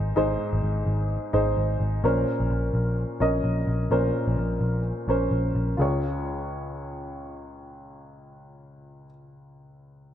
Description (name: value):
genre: piano-driven pop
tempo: 128 BPM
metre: 4/4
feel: swing 56% on 16ths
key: Db major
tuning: A4 = 441 Hz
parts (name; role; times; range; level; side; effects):
- warm upright piano; accompaniment; 0.0-10.1 s; Db2 to Eb5; -26 LUFS; equal; none
- vintage muted picked electric bass; bass; 0.0-9.0 s; Ab1 to Db2; -26 LUFS; equal; none
room: light reverb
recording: none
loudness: -23 LUFS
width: side -10 dB against mid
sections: 0.0-5.8 A section; 5.8-9.5 B section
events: none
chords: 0.0 Ab; 2.0 Bbmadd9; 5.8 Db